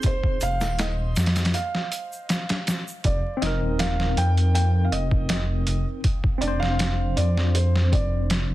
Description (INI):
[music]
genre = trip hop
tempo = 80 BPM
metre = 4/4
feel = straight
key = unclear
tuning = A4 = 442 Hz
[part]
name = tine electric piano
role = accompaniment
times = 0.0-8.5 s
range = C4 to C5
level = -31 LUFS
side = left 1 dB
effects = medium stereo tremolo, tape echo
[part]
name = boom bap sampler-style drum kit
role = drums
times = 0.0-8.5 s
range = hi-hat, kick drum, snare drum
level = -25 LUFS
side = equal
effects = overdrive, studio reverb
[part]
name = tube shaker and triangle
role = percussion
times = 0.0-3.0 s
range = none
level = -41 LUFS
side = equal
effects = none
[part]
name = backwards swelling texture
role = texture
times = 0.0-3.1 s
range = C5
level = -47 LUFS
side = right 4 dB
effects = none
[part]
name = felt-muted upright piano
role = melody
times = 0.1-8.5 s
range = C5 to G5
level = -30 LUFS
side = right 2 dB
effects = vintage 12-bit sampler grit, tape echo
[part]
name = dark detuned saw bass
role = bass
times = 0.4-8.5 s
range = Eb1 to F2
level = -22 LUFS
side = equal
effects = tube saturation
[sound]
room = digital ambience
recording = dense, heavily limited modern master, vinyl crackle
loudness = -21 LUFS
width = side -16 dB against mid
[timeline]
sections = 0.0-3.0 A section; 3.0-8.5 B section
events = break 1.5-3.0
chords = 0.0 Ab6/Eb; 3.0 Cm7; 6.0 Dm7/F